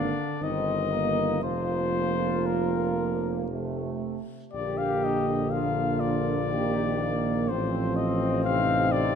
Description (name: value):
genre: classical, hymn-like piece for brass band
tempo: 57-64 BPM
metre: 3/4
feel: rubato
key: Bb major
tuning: A4 = 439 Hz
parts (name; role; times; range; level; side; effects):
- mellow cornet; melody; 0.0-9.2 s; Bb4 to F5; -29 LUFS; left 7 dB; none
- mellow French horn section; second line; 0.0-9.2 s; A3 to Eb4; -32 LUFS; right 8 dB; none
- bright trombone section; accompaniment; 0.0-9.2 s; Bb3 to G4; -32 LUFS; left 3 dB; none
- mellow euphonium; accompaniment; 0.0-9.2 s; C3 to F3; -32 LUFS; right 3 dB; none
- warm tuba; bass; 0.0-9.2 s; F1 to Bb1; -31 LUFS; equal; none
room: moderate scoring stage reverb, RT60 1.9 s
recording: none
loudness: -24 LUFS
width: side -7 dB against mid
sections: 0.0-9.2 A section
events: none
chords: 0.4 Eb/G; 1.4 Bb5/F; 3.5 F; 4.5 Bb; 6.5 Eb/Bb; 7.5 F7/A